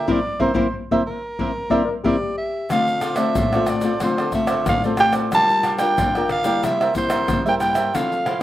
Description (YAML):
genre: samba and choro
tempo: 92 BPM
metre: 4/4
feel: straight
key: D minor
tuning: A4 = 445 Hz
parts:
  - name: growling soprano saxophone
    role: melody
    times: 0.0-8.4 s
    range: Bb4 to A5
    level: -21 LUFS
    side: right 1 dB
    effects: slapback echo
  - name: cavaquinho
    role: accompaniment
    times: 0.0-8.4 s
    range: E4 to G5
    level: -25 LUFS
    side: right 4 dB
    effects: slapback echo
  - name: nylon-string guitar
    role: accompaniment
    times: 0.0-8.4 s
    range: G2 to Bb4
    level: -23 LUFS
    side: left 4 dB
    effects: slapback echo
  - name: surdo, egg shaker, pandeiro and tamborim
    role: percussion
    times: 0.1-8.4 s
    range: none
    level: -26 LUFS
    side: left 1 dB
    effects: none
  - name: tine electric piano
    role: second line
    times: 1.7-2.7 s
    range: G4 to D5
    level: -26 LUFS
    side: left 4 dB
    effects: slapback echo
room: little or no reverb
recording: recorded outdoors, with no room sound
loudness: -17 LUFS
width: side -14 dB against mid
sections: 0.0-2.7 A section; 2.7-8.4 B section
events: band accent 0.1-2.7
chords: 0.1 C7; 2.7 Dm7; 5.3 Gm7; 6.6 C7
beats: | 0.08 0.74 1.39 2.05 | 2.70 3.36 4.01 4.67 | 5.32 5.98 6.63 7.29 | 7.95